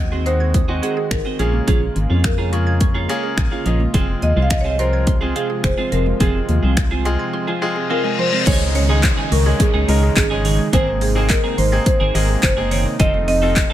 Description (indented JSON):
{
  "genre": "dance-pop",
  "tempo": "106 BPM",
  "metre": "4/4",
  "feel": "straight",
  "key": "Db major",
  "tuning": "A4 = 440 Hz",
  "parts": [
    { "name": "marimba with medium hard mallets", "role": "melody", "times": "0.0-13.7 s", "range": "Ab4 to F5", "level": "-22 LUFS", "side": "right 1 dB", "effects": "tape echo" },
    { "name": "bright baby grand piano", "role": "accompaniment", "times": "0.0-13.7 s", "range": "Ab3 to C6", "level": "-26 LUFS", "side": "left 2 dB", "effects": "sidechain pumping" },
    { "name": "warm analog pad", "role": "sustained chords", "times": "0.0-13.7 s", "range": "C3 to Gb4", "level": "-27 LUFS", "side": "equal", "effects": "chorus, tremolo, sidechain pumping" },
    { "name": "mallet-like synth pluck", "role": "arpeggios", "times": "0.0-13.7 s", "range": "Eb3 to Ab6", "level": "-29 LUFS", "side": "right 7 dB", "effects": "chorus, sidechain pumping, tape echo" },
    { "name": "organ-like FM bass", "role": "bass", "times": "0.0-13.6 s", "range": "F1 to F2", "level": "-19 LUFS", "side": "equal", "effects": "sidechain pumping" },
    { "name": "twelve-string electric guitar", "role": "riff", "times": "0.1-13.7 s", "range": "Bb3 to A4", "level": "-27 LUFS", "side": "right 5 dB", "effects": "lush chorus" },
    { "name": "pop drum kit", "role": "drums", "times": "0.3-13.7 s", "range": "crash cymbal, finger snaps, handclaps, hi-hat, kick drum", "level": "-19 LUFS", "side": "equal", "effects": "overdrive" },
    { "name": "reverse cymbal and downlifter", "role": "sound effects", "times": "7.6-13.0 s", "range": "none", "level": "-26 LUFS", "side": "left 3 dB", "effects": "none" }
  ],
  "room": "little or no reverb",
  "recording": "none",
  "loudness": "-15 LUFS",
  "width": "side -12 dB against mid",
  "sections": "0.0-8.5 A section; 8.5-13.7 B section",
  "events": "grand piano fill 3.1-3.9, 7.6-8.5; reverse cymbal 7.6-8.5",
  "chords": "0.0 Ab7; 1.4 Bbm7; 3.9 Fm; 8.5 Dbsus2; 10.7 Abadd9; 13.0 F7"
}